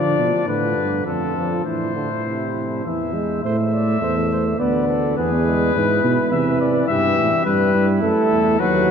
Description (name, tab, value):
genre	classical, imitative canzona for brass ensemble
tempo	104 BPM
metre	3/4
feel	straight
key	A minor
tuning	A4 = 439 Hz
part	warm cornet	melody	0.0-8.9 s	A4 to E5	-22 LUFS	left 6 dB	none
part	dark trumpet	second line	0.0-8.9 s	D4 to D5	-27 LUFS	right 4 dB	none
part	warm euphonium	accompaniment	0.0-8.9 s	C3 to B3	-22 LUFS	right 1 dB	none
part	mellow tuba	bass	0.0-8.9 s	D2 to D3	-23 LUFS	right 2 dB	none
room	wet cathedral reverb, RT60 6.1 s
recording	dark, warm production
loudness	-17 LUFS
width	side -7 dB against mid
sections	0.0-3.4 A section; 3.4-8.9 B section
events	none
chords	0.0 Bdim; 1.7 Am; 2.8 E; 3.4 Am; 4.6 Bm7/D; 5.2 E; 6.3 Cmaj9; 6.9 Em/G; 8.0 Esus24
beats	0.47 1.06 | 1.65 2.25 2.85 | 3.44 4.02 4.60 | 5.18 5.75 6.32 | 6.89 7.46 8.03 | 8.60